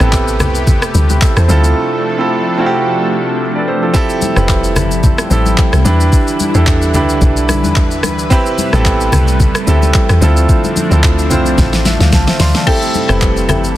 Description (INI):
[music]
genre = amapiano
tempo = 110 BPM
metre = 4/4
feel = swing 55% on 16ths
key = A minor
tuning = A4 = 440 Hz
[part]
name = clear concert grand piano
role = accompaniment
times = 0.0-13.8 s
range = B3 to C6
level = -16 LUFS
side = right 3 dB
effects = none
[part]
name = lush unison pad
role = sustained chords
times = 0.0-13.8 s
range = C3 to B4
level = -20 LUFS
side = left 2 dB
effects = chorus, phaser
[part]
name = woody log drum bass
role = bass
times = 0.0-13.8 s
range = F1 to E2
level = -13 LUFS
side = equal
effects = none
[part]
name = smooth R&B drum kit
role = drums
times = 0.0-13.8 s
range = crash cymbal, handclaps, hi-hat, kick drum, rim click, shaker, snare drum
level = -14 LUFS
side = equal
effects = none
[part]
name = congas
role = percussion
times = 0.4-13.6 s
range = none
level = -21 LUFS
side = left 4 dB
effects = none
[part]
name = mallet-like synth pluck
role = stabs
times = 12.7-13.7 s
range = A4 to G5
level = -20 LUFS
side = left 6 dB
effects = chorus, digital delay
[sound]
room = little or no reverb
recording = dense, heavily limited modern master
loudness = -10 LUFS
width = side -14 dB against mid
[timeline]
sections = 0.0-13.8 A section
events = break 1.8-3.9; drum fill 11.6-12.7; grand piano fill 11.6-12.7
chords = 0.0 Am9; 1.5 Dm7; 3.9 Fmaj9; 5.9 Em7; 8.3 Am9; 10.2 Dm7; 12.7 Fmaj9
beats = 0.13 0.67 1.22 | 1.76 2.31 2.85 3.40 | 3.94 4.49 5.04 5.58 | 6.13 6.67 7.22 7.76 | 8.31 8.85 9.40 9.94 | 10.49 11.04 11.58 12.13 | 12.67 13.22 13.76